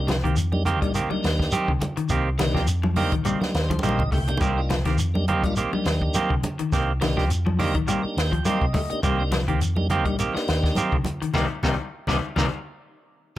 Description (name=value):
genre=afrobeat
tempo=104 BPM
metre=4/4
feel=swing 55% on 16ths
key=C minor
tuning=A4 = 439 Hz
part: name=tonewheel organ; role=accompaniment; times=0.0-12.5 s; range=Bb3 to G5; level=-30 LUFS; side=equal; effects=slow rotary speaker
part: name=hollow-body short-scale fingered electric bass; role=bass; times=0.0-12.5 s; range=Bb1 to F2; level=-26 LUFS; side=equal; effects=none
part: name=electric guitar at the edge of break-up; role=arpeggios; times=0.1-12.5 s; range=C3 to A3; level=-28 LUFS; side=left 6 dB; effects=slapback echo
part: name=semi-hollow electric guitar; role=stabs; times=0.1-12.5 s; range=Eb3 to G4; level=-27 LUFS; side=right 4 dB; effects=none
part: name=compact cocktail drum kit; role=drums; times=0.1-12.5 s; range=hi-hat, kick drum, snare drum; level=-28 LUFS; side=equal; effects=none
part: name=congas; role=percussion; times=0.1-12.5 s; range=none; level=-30 LUFS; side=right 1 dB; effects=none
part: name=shekere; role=percussion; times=0.1-12.5 s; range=none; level=-32 LUFS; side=right 2 dB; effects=none
room=light reverb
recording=none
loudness=-21 LUFS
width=side -14 dB against mid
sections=0.0-13.4 A section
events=tonewheel organ fill 3.3-4.4, 7.9-9.0; drum fill 3.7-4.4; band accent 11.4-13.4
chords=0.0 Cm7